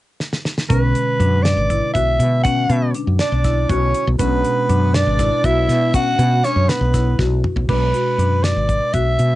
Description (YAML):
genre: progressive instrumental, band music in an uneven meter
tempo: 240 BPM (eighths)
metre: 7/8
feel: straight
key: B dorian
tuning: A4 = 440 Hz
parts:
  - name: damped 70s drum kit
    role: drums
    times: 0.2-9.3 s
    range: crash cymbal, hi-hat, kick drum, snare drum, toms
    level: -22 LUFS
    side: equal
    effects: none
  - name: growling soprano saxophone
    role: melody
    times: 0.7-9.4 s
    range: B4 to F#5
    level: -20 LUFS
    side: equal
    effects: cassette tape
  - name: tine electric piano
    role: accompaniment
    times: 0.7-9.4 s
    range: B2 to B4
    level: -26 LUFS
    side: right 5 dB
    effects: overdrive, cassette tape
  - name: marimba with hard mallets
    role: arpeggios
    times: 0.7-9.3 s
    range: C#4 to F#4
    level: -26 LUFS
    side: left 7 dB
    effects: cassette tape
  - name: woody fretless electric bass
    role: bass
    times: 0.7-9.4 s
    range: G#1 to B2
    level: -18 LUFS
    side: equal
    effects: none
  - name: breathy alto saxophone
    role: second line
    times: 3.2-7.2 s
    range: B3 to F#4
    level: -25 LUFS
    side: right 7 dB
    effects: cassette tape
  - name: egg shaker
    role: percussion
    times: 4.2-7.2 s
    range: none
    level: -38 LUFS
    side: left 10 dB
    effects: none
room: light reverb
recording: home recording on cassette, nothing above 10.9 kHz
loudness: -15 LUFS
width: side -16 dB against mid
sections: 0.7-7.7 A section; 7.7-9.4 B section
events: drum fill 0.2-0.7, 7.2-7.7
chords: 0.0 N.C.; 0.7 Bm69; 7.7 Bm6